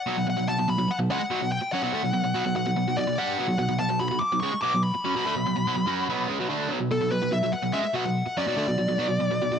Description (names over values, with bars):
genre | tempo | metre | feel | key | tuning
rock | 145 BPM | 4/4 | straight | B minor | A4 = 439 Hz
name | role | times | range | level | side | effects
high-gain lead guitar | melody | 0.0-9.6 s | A4 to D6 | -27 LUFS | left 2 dB | distortion, tape echo
overdriven semi-hollow guitar | riff | 0.1-9.6 s | B2 to G4 | -26 LUFS | right 1 dB | none
room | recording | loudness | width
light reverb | none | -23 LUFS | side -7 dB against mid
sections
0.1-6.7 A section; 6.7-9.6 B section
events
lead electric guitar solo 6.7-9.6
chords
0.1 B5; 6.7 Bm